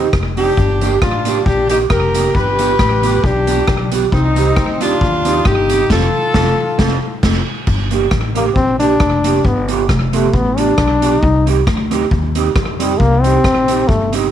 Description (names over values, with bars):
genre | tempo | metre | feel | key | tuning
ska | 135 BPM | 4/4 | swing 55% on 8ths | unclear | A4 = 440 Hz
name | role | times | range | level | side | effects
mellow horn section | melody | 0.0-7.2 s | C4 to B4 | -16 LUFS | left 2 dB | none
electric guitar at the edge of break-up | accompaniment | 0.0-14.3 s | Bb3 to A4 | -19 LUFS | right 11 dB | ensemble chorus, slapback echo
upright bass | bass | 0.0-14.3 s | F1 to F2 | -18 LUFS | left 1 dB | none
street-band drum kit | drums | 0.1-14.2 s | crash cymbal, hi-hat, kick drum, rim click, snare drum | -18 LUFS | equal | slapback echo
tambourine | percussion | 0.8-5.8 s | none | -35 LUFS | left 16 dB | none
bright trombone | melody | 8.4-14.1 s | G3 to Eb4 | -15 LUFS | left 3 dB | none
room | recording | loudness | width
light reverb, small room ambience | 1960s-style stereo with parts hard left and right | -12 LUFS | side -10 dB against mid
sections
0.0-7.7 A section; 7.7-14.3 B section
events
band accent 5.9-7.7; trombone solo 7.7-14.3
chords
0.0 Cm; 0.6 Gm; 2.4 G7; 4.1 Cm; 5.9 F; 7.7 Gm; 9.4 G7; 11.2 Cm